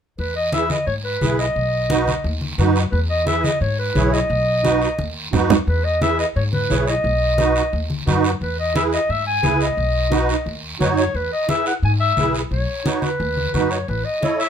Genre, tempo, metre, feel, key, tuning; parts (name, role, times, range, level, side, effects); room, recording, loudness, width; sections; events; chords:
latin, cumbia; 175 BPM; 4/4; straight; E major; A4 = 440 Hz
warm clarinet; melody; 0.2-14.5 s; B4 to G#5; -21 LUFS; left 1 dB
upright bass; bass; 0.2-14.0 s; A1 to G#2; -22 LUFS; left 1 dB
congas; percussion; 0.2-14.4 s; -23 LUFS; left 1 dB
guiro; percussion; 0.2-14.5 s; -31 LUFS; right 4 dB
musette accordion; accompaniment; 0.5-14.5 s; D#4 to C#5; -21 LUFS; right 5 dB
light reverb; minimal, uncompressed stereo recording; -17 LUFS; side -8 dB against mid
0.2-11.1 A section; 11.1-14.5 B section
drum fill 5.0-5.7
0.2 E; 1.6 B; 2.9 E; 4.3 B; 5.7 E; 7.0 B; 8.4 E; 9.8 B; 11.1 E; 12.5 B; 13.9 A